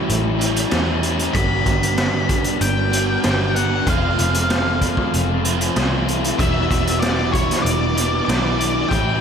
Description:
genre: rock, shoegaze and dream pop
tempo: 95 BPM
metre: 4/4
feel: straight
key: unclear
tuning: A4 = 440 Hz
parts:
  - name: electric guitar through a small old amp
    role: arpeggios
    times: 0.0-9.2 s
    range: E3 to A4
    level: -30 LUFS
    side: right 3 dB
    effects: wide subtle chorus, digital delay
  - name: overdriven electric guitar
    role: riff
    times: 0.0-9.2 s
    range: E2 to G4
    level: -24 LUFS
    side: left 11 dB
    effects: wide subtle chorus
  - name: overdriven electric guitar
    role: riff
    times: 0.0-9.2 s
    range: E2 to G4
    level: -24 LUFS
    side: right 10 dB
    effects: reverse reverb
  - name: vintage muted picked electric bass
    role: bass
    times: 0.1-9.2 s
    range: E1 to E2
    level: -22 LUFS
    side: equal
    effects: none
  - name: raw garage drum kit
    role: drums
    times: 0.1-9.1 s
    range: hi-hat, kick drum, snare drum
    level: -22 LUFS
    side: equal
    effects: none
  - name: octave-fuzz lead guitar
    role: melody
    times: 1.3-9.2 s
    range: C#5 to B5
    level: -24 LUFS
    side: left 2 dB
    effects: distortion, digital delay
room: light reverb, small room ambience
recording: none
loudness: -16 LUFS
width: side -7 dB against mid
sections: 0.0-9.2 A section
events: none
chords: 0.0 A7; 1.4 G; 3.9 Fmaj7; 6.4 Em7

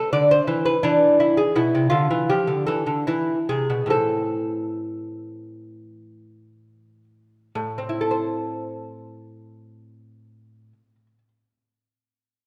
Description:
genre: classical, baroque-style dance for lute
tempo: 60-85 BPM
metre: 4/4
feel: rubato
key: A minor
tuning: A4 = 441 Hz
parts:
  - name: lute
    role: solo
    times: 0.0-11.3 s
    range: A2 to D5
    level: -22 LUFS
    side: equal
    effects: none
room: wet recital hall reverb, RT60 1.8 s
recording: none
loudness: -22 LUFS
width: mono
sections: 0.0-7.6 A section; 7.6-11.4 B section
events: slowing down 0.0-7.6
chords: 0.0 Cmaj13/D; 0.9 E5; 2.3 Dm; 3.1 E; 3.9 Am

